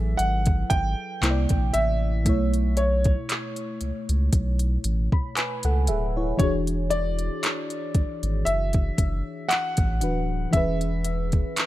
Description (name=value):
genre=contemporary R&B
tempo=58 BPM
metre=4/4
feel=swing 54% on 16ths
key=unclear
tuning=A4 = 440 Hz
part: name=warm concert grand piano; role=melody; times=0.0-11.5 s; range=C#5 to G5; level=-28 LUFS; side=equal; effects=ping-pong delay
part: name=mellow FM electric piano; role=accompaniment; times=0.0-11.7 s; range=B2 to B5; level=-29 LUFS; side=equal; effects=chorus
part: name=saturated sub bass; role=bass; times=0.0-11.4 s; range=D1 to C#2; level=-25 LUFS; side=equal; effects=none
part: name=smooth R&B drum kit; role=drums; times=0.2-11.7 s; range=handclaps, hi-hat, kick drum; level=-24 LUFS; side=equal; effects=none
room=little or no reverb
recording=none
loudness=-22 LUFS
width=side -15 dB against mid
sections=0.0-11.7 A section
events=none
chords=0.0 F#m9; 1.2 C9; 2.3 B9sus4; 10.5 C#m7/E